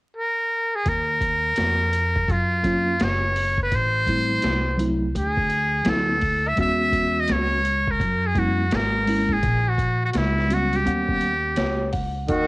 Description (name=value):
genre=hip hop, jazz-hop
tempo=84 BPM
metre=4/4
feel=swing 64% on 16ths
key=unclear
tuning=A4 = 435 Hz
part: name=trumpet with metal mute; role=melody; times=0.2-12.5 s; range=Fb4 to E5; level=-22 LUFS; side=equal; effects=cassette tape
part: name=upright bass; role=bass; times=0.9-12.5 s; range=Gb1 to Gb2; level=-25 LUFS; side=equal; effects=none
part: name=boom bap sampler-style drum kit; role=drums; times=0.9-12.5 s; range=hi-hat, kick drum, snare drum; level=-27 LUFS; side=equal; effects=cassette tape
part: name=mellow tine electric piano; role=accompaniment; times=2.6-12.3 s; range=Gb3 to F#5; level=-26 LUFS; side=equal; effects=medium stereo tremolo, cassette tape
part: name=breathy tenor saxophone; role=second line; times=12.3-12.5 s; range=Eb3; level=-21 LUFS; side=right 1 dB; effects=cassette tape
room=light reverb, studio ambience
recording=home recording on cassette, vinyl crackle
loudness=-19 LUFS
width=side -23 dB against mid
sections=0.9-12.3 A section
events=tine electric piano fill 11.2-12.3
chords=0.0 N.C.; 0.9 Ebmadd9; 3.7 Am7; 5.1 D9; 6.6 E69; 9.4 Gb7b9/Bb; 10.9 Eb7alt